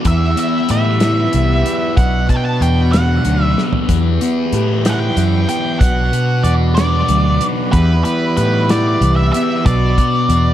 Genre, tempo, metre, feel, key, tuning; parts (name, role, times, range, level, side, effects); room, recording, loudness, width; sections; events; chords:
psychedelic rock; 62 BPM (dotted quarters); 6/8; straight; E minor; A4 = 440 Hz
pedal harmonium; sustained chords; 0.0-10.5 s; E3 to B4; -25 LUFS; right 3 dB
thick fuzz guitar; riff; 0.0-10.5 s; B2 to G4; -17 LUFS; left 1 dB; distortion, phaser, analog delay
damped 70s drum kit; drums; 0.0-10.4 s; hi-hat, kick drum, snare drum, toms; -18 LUFS; equal; analog delay
octave-fuzz lead guitar; melody; 0.1-10.5 s; B4 to A5; -20 LUFS; equal; distortion, analog delay
picked electric bass; bass; 0.1-10.5 s; B1 to A2; -15 LUFS; equal
small room ambience; echo-heavy mix; -12 LUFS; side -12 dB against mid
0.0-10.5 A section
drum fill 3.6-3.9
0.1 Em; 2.0 Bm; 3.9 Em; 5.8 Bm; 7.7 Em; 9.7 Bm